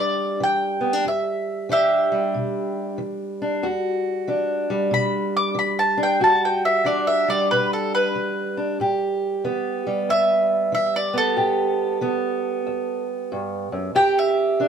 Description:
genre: acoustic country blues, solo or duo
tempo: 93 BPM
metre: 4/4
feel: swing 64% on 8ths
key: E minor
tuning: A4 = 441 Hz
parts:
  - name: mandolin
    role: melody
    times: 0.0-14.7 s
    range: G4 to D6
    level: -21 LUFS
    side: equal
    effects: slapback echo
  - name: fingerpicked steel-string acoustic guitar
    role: accompaniment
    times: 0.0-14.7 s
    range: E2 to G4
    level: -23 LUFS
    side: right 1 dB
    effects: none
room: light reverb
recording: band playing live in one room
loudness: -19 LUFS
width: side -7 dB against mid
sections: 0.0-14.7 A section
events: mandolin solo 0.0-14.7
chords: 0.0 Em9; 8.8 Asus2; 14.0 Em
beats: 0.40 | 1.04 1.69 2.34 2.98 | 3.63 4.28 4.92 5.57 | 6.21 6.86 7.50 8.14 | 8.79 9.43 10.08 10.72 | 11.37 12.01 12.66 13.30 | 13.95 14.60

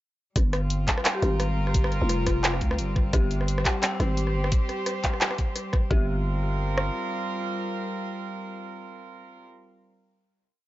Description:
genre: half-time drum and bass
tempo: 173 BPM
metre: 4/4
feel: swing 56% on 16ths, half-time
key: G phrygian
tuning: A4 = 436 Hz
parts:
  - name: rich symphonic cello section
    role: sustained chords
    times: 0.4-9.4 s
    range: G3 to C5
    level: -32 LUFS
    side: right 1 dB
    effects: vintage 12-bit sampler grit, sidechain pumping
  - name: growling 808-style bass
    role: bass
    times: 0.4-6.9 s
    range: F1 to D2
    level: -26 LUFS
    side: equal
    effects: none
  - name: drum and bass drum kit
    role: drums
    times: 0.4-6.9 s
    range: kick drum, rim click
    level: -24 LUFS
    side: equal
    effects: none
  - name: drum and bass drum kit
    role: drums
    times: 0.4-5.8 s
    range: handclaps, hi-hat, rim click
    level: -27 LUFS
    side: equal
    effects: none
  - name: vibraphone with medium mallets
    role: melody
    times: 1.1-2.5 s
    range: F4 to G4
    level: -33 LUFS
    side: left 2 dB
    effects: analog delay
  - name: dark detuned synth bell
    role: arpeggios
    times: 3.1-6.1 s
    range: G4 to G5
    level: -36 LUFS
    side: left 2 dB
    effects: chorus, analog delay
room: digital ambience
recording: dry, gritty hardware recording, nothing above 7.6 kHz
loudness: -23 LUFS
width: side -15 dB against mid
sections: 0.4-5.9 drop; 5.9-8.7 final chord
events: drop 0.4-5.9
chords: 0.4 Gm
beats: | 0.36 0.70 1.05 1.40 | 1.75 2.09 2.44 2.79 | 3.13 3.48 3.83 4.17 | 4.52 4.87 5.21 5.56 | 5.91 6.25 6.60 6.95 | 7.29 7.64 7.99 8.34

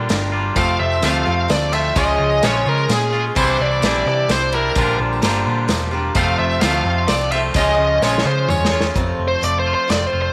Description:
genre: folk rock and heartland rock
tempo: 128 BPM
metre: 3/4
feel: straight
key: F major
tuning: A4 = 440 Hz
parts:
  - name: picked swing-style acoustic guitar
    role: accompaniment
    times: 0.0-10.3 s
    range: F2 to D5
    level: -28 LUFS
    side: equal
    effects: none
  - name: twangy electric guitar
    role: riff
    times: 0.0-10.3 s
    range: F2 to F4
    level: -24 LUFS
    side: equal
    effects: none
  - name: hollow-body short-scale picked electric bass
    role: bass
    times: 0.0-10.3 s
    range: E1 to Db3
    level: -25 LUFS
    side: equal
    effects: none
  - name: unplugged drum kit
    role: drums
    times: 0.1-10.0 s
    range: crash cymbal, hi-hat, kick drum, ride cymbal, snare drum, toms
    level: -25 LUFS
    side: equal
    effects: none
  - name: tambourine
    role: percussion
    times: 0.1-8.7 s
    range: none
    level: -37 LUFS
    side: equal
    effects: none
  - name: bluesy overdriven lead guitar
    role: melody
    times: 0.6-10.3 s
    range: Ab4 to F5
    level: -22 LUFS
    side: equal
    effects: distortion
room: wet spring reverb, RT60 1.9 s, small room ambience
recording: none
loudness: -18 LUFS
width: mono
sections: 0.0-9.0 A section; 9.0-10.3 B section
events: drum fill 8.0-9.0; lead electric guitar solo 9.0-10.3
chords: 0.0 Bb6; 0.6 F; 2.0 Db; 3.4 Cadd9; 4.8 Bb6; 6.2 F; 7.6 Db; 9.0 F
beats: 0.09 | 0.56 1.03 1.49 | 1.96 2.43 2.89 | 3.36 3.83 4.29 | 4.76 5.23 5.70 | 6.16 6.63 7.10 | 7.56 8.03 8.50 | 8.96 9.43 9.90

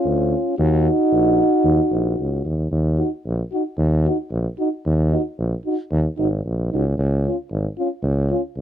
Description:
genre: balkan folk, Balkan brass band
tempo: 112 BPM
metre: 2/4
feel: swing 55% on 16ths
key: Eb minor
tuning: A4 = 440 Hz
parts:
  - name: dark euphonium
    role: accompaniment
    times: 0.0-8.4 s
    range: Db4 to Eb4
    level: -22 LUFS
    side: right 6 dB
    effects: none
  - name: mellow euphonium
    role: accompaniment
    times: 0.0-8.4 s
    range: F4 to Gb4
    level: -22 LUFS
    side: left 7 dB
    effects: none
  - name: mellow tuba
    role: bass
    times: 0.0-8.6 s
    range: Ab1 to Eb2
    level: -20 LUFS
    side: equal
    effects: none
room: light reverb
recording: none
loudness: -18 LUFS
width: side -10 dB against mid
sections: 0.0-2.7 A section; 2.7-8.6 B section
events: none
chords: 0.0 Db; 0.6 Ebm; 7.0 Db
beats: 0.05 | 0.58 1.12 | 1.66 2.19 | 2.72 3.26 | 3.79 4.33 | 4.86 5.39 | 5.93 6.46 | 6.99 7.53 | 8.06 8.59

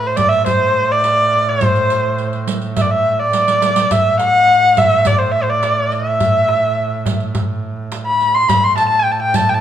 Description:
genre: Turkish makam ensemble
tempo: 105 BPM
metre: 4/4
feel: straight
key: A makam huseyni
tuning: A4 = 440 Hz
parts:
  - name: rich kamancheh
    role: melody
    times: 0.0-9.6 s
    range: C5 to C6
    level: -13 LUFS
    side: equal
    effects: none
  - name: clear double bass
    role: drone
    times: 0.0-9.6 s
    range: A2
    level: -24 LUFS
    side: right 5 dB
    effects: none
  - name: darbuka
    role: percussion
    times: 0.0-9.6 s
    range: none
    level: -22 LUFS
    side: left 1 dB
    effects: none
  - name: riq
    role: percussion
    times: 0.2-9.6 s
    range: none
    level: -24 LUFS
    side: right 5 dB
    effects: none
room: moderate recital hall reverb, RT60 1.5 s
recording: minimal, uncompressed stereo recording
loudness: -12 LUFS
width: side -10 dB against mid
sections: 0.0-9.6 A section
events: drum fill 3.3-3.9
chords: none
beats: 0.46 1.04 | 1.61 2.19 2.76 3.33 | 3.91 4.48 5.05 5.63 | 6.20 6.77 7.34 7.92 | 8.49 9.06

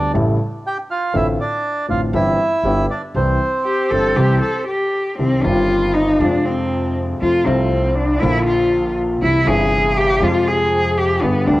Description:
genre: tango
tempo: 119 BPM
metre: 4/4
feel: rubato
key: C major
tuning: A4 = 440 Hz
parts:
  - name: bandoneon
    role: melody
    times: 0.0-4.6 s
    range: C4 to G5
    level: -20 LUFS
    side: right 2 dB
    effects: cassette tape
  - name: warm baby grand piano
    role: accompaniment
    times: 0.0-11.6 s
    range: G1 to G4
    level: -19 LUFS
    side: left 1 dB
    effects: none
  - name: upright bass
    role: bass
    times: 0.0-11.6 s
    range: G1 to F2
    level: -23 LUFS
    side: right 1 dB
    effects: none
  - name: rich cello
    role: second line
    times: 3.7-11.6 s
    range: B3 to A4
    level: -17 LUFS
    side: left 1 dB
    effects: none
room: moderate spring reverb, RT60 2.9 s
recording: home recording on cassette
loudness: -15 LUFS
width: side -17 dB against mid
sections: 0.0-5.2 A section; 5.2-11.6 B section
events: cello solo 5.2-11.6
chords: 0.1 A7; 1.1 Dm7/A; 2.1 C/G; 2.6 G; 3.1 C; 5.2 Cm; 6.2 Fm; 7.2 F; 8.2 Bb; 9.2 C; 10.2 Fm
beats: 0.15 0.64 | 1.14 1.64 2.14 2.64 | 3.15 3.65 4.17 4.68 | 5.19 5.70 6.21 6.71 | 7.22 7.72 8.22 8.72 | 9.22 9.72 10.22 10.72 | 11.22

